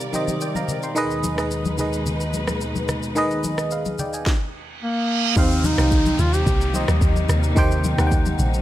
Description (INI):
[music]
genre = amapiano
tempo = 109 BPM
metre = 4/4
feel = straight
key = unclear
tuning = A4 = 439 Hz
[part]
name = barking FM electric piano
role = accompaniment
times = 0.0-8.6 s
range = Eb3 to C6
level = -24 LUFS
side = right 1 dB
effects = chorus
[part]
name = warm studio string section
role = sustained chords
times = 0.0-8.6 s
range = Eb2 to D5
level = -28 LUFS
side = left 1 dB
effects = sidechain pumping
[part]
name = afro-pop drum kit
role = drums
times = 0.0-8.6 s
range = kick drum, rim click, shaker, snare drum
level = -23 LUFS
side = equal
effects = none
[part]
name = downlifter and reverse cymbal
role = sound effects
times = 4.7-8.6 s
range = none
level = -29 LUFS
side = right 4 dB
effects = none
[part]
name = congas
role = percussion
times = 0.1-8.5 s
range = none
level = -29 LUFS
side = left 2 dB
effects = none
[part]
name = warm duduk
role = melody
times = 4.8-6.9 s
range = Bb3 to G4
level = -24 LUFS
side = equal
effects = ping-pong delay
[part]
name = deep log drum bass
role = bass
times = 5.4-8.6 s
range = Bb1 to Eb2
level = -20 LUFS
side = equal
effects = none
[sound]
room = little or no reverb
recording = none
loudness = -18 LUFS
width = side -14 dB against mid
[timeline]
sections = 0.0-5.4 A section; 5.4-8.6 B section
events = reverse cymbal 4.7-5.4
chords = 0.0 Eb6; 1.0 Abm/Eb; 5.4 Eb6